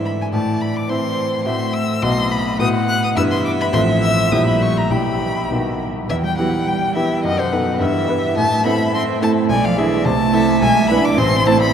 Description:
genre	quick classical-period movement for piano quartet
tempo	106 BPM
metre	2/4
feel	straight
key	E minor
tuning	A4 = 439 Hz
part	rich cello	second line	0.0-11.7 s	A2 to D4	-22 LUFS	right 6 dB	none
part	rich violin	second line	0.0-11.7 s	C5 to G5	-24 LUFS	left 1 dB	none
part	clear concert grand piano	accompaniment	0.0-11.7 s	A1 to E5	-18 LUFS	equal	none
part	rich violin	melody	0.1-11.7 s	B4 to F#6	-22 LUFS	left 3 dB	none
room	wet cathedral reverb, RT60 7.3 s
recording	in a vast, echoing space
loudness	-15 LUFS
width	side -8 dB against mid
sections	0.0-6.1 A section; 6.1-11.7 B section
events	none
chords	0.3 Am; 1.5 F#m7b5/A; 2.0 B; 2.6 B7(no3)/A; 3.2 Em/G; 3.7 F/A; 4.3 A#dim7; 4.9 Em/B; 5.5 B; 6.1 Em; 7.2 B7/F#; 7.8 Em/G; 8.4 Am; 9.5 E7/B; 10.1 Am/C; 10.6 E7/B; 11.2 Am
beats	| 0.33 0.90 | 1.46 2.03 | 2.60 3.16 | 3.73 4.31 | 4.90 5.50 | 6.09 6.67 | 7.24 7.80 | 8.37 8.94 | 9.50 10.05 | 10.62 11.18

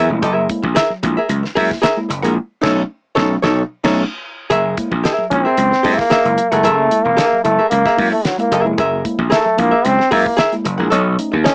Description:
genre	funk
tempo	112 BPM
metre	4/4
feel	straight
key	F# mixolydian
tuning	A4 = 441 Hz
part	archtop guitar, miked and amplified	accompaniment	0.0-11.5 s	D#4 to F#5	-20 LUFS	equal	none
part	mellow tine electric piano	stabs	0.0-11.5 s	B2 to E4	-26 LUFS	equal	phaser
part	gritty slap bass	bass	0.0-11.4 s	E1 to F#2	-21 LUFS	equal	overdrive
part	damped 70s drum kit	drums	0.2-11.5 s	crash cymbal, hi-hat, kick drum, snare drum	-25 LUFS	equal	none
part	group handclap	percussion	0.8-2.0 s	none	-27 LUFS	equal	none
part	bright trombone	melody	5.3-11.5 s	F#3 to C#4	-17 LUFS	equal	none
room	little or no reverb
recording	small speaker sound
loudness	-16 LUFS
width	mono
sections	0.0-4.5 A section; 4.5-11.5 B section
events	band accent 2.4-4.5; trombone solo 4.5-11.5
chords	0.0 F#9; 2.4 B9; 4.5 F#9; 10.9 B9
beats	| 0.23 0.76 1.30 1.83 | 2.37 2.90 3.44 3.98 | 4.51 5.04 5.58 6.12 | 6.65 7.18 7.72 8.25 | 8.79 9.32 9.86 10.39 | 10.93 11.46

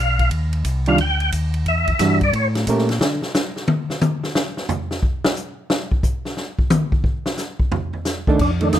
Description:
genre	soul jazz organ trio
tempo	178 BPM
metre	4/4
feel	swing 65% on 8ths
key	unclear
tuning	A4 = 438 Hz
part	percussive tonewheel organ	melody	0.0-2.5, 8.4-8.8 s	D4 to G5	-21 LUFS	left 1 dB	slow rotary speaker, overdrive, chorus vibrato, plate reverb
part	mellow tonewheel organ	bass	0.0-3.2, 8.4-8.8 s	Cb2 to D3	-20 LUFS	equal	overdrive, chorus vibrato, slow rotary speaker
part	vintage drum kit	drums	0.2-8.8 s	crash cymbal, hi-hat, kick drum, ride cymbal, snare drum, toms	-20 LUFS	left 1 dB	none
part	hollow-body jazz guitar	accompaniment	0.9-2.9, 8.3-8.8 s	Eb3 to Bb4	-19 LUFS	right 3 dB	none
room	light reverb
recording	none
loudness	-18 LUFS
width	side -11 dB against mid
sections	0.0-8.4 A section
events	tonewheel organ solo 0.0-8.4; drum solo 3.0-8.4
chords	0.3 Ebmaj7; 1.7 Em9; 2.3 A7b9; 3.0 N.C.; 7.0 D5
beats	| 0.31 0.65 0.99 1.32 | 1.66 2.00 2.33 2.67 | 3.00 3.34 3.68 4.01 | 4.35 4.69 5.02 5.36 | 5.70 6.03 6.37 6.71 | 7.04 7.38 7.72 8.05 | 8.39 8.73

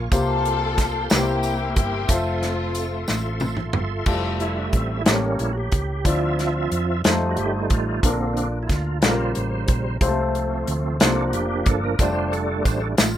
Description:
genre	slow gospel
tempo	61 BPM (dotted quarters)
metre	6/8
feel	straight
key	F major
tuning	A4 = 441 Hz
part	warm studio string section	melody	0.0-3.4 s	A3 to A4	-26 LUFS	left 4 dB	none
part	warm grand piano	accompaniment	0.0-13.2 s	A2 to E5	-27 LUFS	left 3 dB	none
part	bright tonewheel organ	sustained chords	0.0-13.2 s	Db3 to Db6	-27 LUFS	right 3 dB	slow rotary speaker, chorus vibrato
part	hollow-body short-scale fingered electric bass	bass	0.0-13.2 s	F1 to F2	-26 LUFS	right 1 dB	none
part	natural country drum kit	drums	0.1-13.1 s	crash cymbal, hi-hat, kick drum, snare drum, toms	-20 LUFS	equal	none
part	tambourine	percussion	0.1-3.7, 12.0-13.2 s	none	-36 LUFS	right 3 dB	none
room	light reverb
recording	rough home demo mix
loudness	-20 LUFS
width	side -11 dB against mid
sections	0.0-4.1 A section; 4.1-13.2 B section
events	drum fill 3.1-4.1; tonewheel organ solo 4.1-13.2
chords	0.1 C7sus4; 1.1 C7; 2.1 Fmaj7; 4.1 Fmaj9; 5.1 A7b9; 6.1 Dm9; 7.0 F7; 8.0 Bbmaj7; 9.0 Bbm6; 10.0 F/C; 11.0 C9sus4; 12.0 F69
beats	| 0.12 1.10 | 2.09 3.08 | 4.07 5.07 | 6.05 7.04 | 8.04 9.03 | 10.02 11.01 | 11.99 12.98

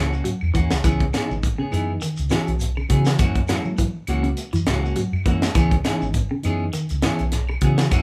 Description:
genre	afrobeat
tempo	102 BPM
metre	4/4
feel	swing 55% on 16ths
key	C# dorian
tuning	A4 = 440 Hz
part	clean electric guitar	stabs	0.0-8.0 s	E3 to G#4	-30 LUFS	equal	none
part	hollow-body short-scale fingered electric bass	bass	0.0-8.0 s	G#1 to F#3	-26 LUFS	equal	none
part	shekere	percussion	0.1-8.0 s	none	-35 LUFS	equal	none
part	electric guitar at the edge of break-up	arpeggios	0.2-8.0 s	C#3 to F#3	-29 LUFS	equal	phaser
part	tight funk drum kit	drums	0.3-8.0 s	hi-hat, kick drum, snare drum	-25 LUFS	equal	none
part	claves	percussion	0.4-8.0 s	none	-40 LUFS	equal	none
part	mellow reed electric piano	accompaniment	1.1-7.9 s	E3 to F#4	-32 LUFS	equal	fast tremolo
room	light reverb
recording	band playing live in one room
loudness	-22 LUFS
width	mono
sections	0.0-8.0 A section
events	none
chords	0.0 F#7; 0.8 C#m7; 3.2 F#7; 5.6 C#m7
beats	0.26 | 0.85 1.44 2.02 2.62 | 3.20 3.79 4.38 4.97 | 5.56 6.15 6.74 7.33 | 7.92

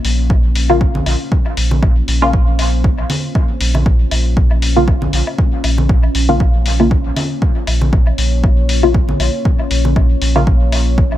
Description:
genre	dub techno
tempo	118 BPM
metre	4/4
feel	swing 56% on 16ths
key	Bb minor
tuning	A4 = 440 Hz
part	deep dark ambient pad	sustained chords	0.0-11.2 s	Bb3 to Db5	-24 LUFS	left 2 dB	chorus, built-in reverb, sidechain pumping
part	warm sub bass	bass	0.0-11.2 s	Bb1	-15 LUFS	equal	sidechain pumping
part	electronic hi-hat	drums	0.0-10.8 s	none	-23 LUFS	left 3 dB	none
part	electronic kick drum	drums	0.3-11.1 s	none	-14 LUFS	equal	none
part	woodblock and congas	percussion	0.3-11.2 s	none	-24 LUFS	equal	overdrive, sidechain pumping on perc, dub echo
part	filtered dub chord stab	stabs	0.7-10.4 s	Db3 to F4	-18 LUFS	left 1 dB	chorus, phaser, sidechain pumping, dub echo
room	little or no reverb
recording	none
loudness	-12 LUFS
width	side -13 dB against mid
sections	0.0-11.2 A section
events	filter sweep on synth stab 0.0-11.2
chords	0.0 Bbm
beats	0.30 0.81 | 1.32 1.83 2.33 2.84 | 3.35 3.86 4.37 4.88 | 5.38 5.89 6.40 6.91 | 7.42 7.93 8.44 8.95 | 9.45 9.96 10.47 10.98

